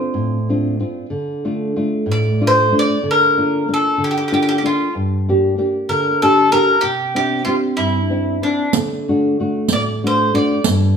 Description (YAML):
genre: italian folk, Italian serenade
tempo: 63 BPM (dotted quarters)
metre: 6/8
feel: straight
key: D minor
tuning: A4 = 435 Hz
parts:
  - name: bowl-back mandolin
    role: melody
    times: 0.0-10.6 s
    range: D4 to D5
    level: -17 LUFS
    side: equal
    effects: none
  - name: nylon-string guitar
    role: accompaniment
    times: 0.0-11.0 s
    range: G2 to E5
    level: -17 LUFS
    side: equal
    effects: none
  - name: riq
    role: percussion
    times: 8.7-11.0 s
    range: none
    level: -18 LUFS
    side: right 6 dB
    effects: none
room: wet large studio reverb, RT60 1.0 s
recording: band playing live in one room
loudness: -15 LUFS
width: side -7 dB against mid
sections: 0.0-1.1 A section; 1.1-11.0 A section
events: none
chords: 0.0 Dm7; 1.1 Dm; 3.0 Bb/D; 4.9 Gm; 6.8 Cadd9; 8.7 D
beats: 0.16 | 1.13 2.09 | 3.03 3.98 | 4.92 5.87 | 6.82 7.78 | 8.73 9.69 | 10.65